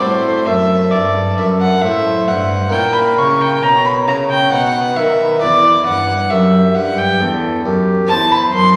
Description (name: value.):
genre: classical, baroque-style sonata movement with continuo.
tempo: 67 BPM.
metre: 3/4.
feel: straight.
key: E minor.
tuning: A4 = 441 Hz.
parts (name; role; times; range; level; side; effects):
mellow trumpet; melody; 0.0-8.8 s; G4 to C#5; -25 LUFS; equal; none.
warm violin; second line; 0.0-8.8 s; C5 to C#6; -17 LUFS; equal; none.
harpsichord; accompaniment; 0.0-8.8 s; E2 to C#5; -19 LUFS; equal; none.
warm cello; bass; 0.0-8.8 s; E2 to D#3; -24 LUFS; equal; none.
room: wet recital hall reverb, RT60 1.7 s.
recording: vinyl crackle.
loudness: -14 LUFS.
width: mono.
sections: 0.0-8.8 A section.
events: none.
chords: 0.0 F#dim; 2.7 A#dim; 4.5 B; 5.4 Em; 8.1 C/E.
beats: | 0.02 0.93 1.84 | 2.74 3.64 4.53 | 5.42 6.31 7.20 | 8.09.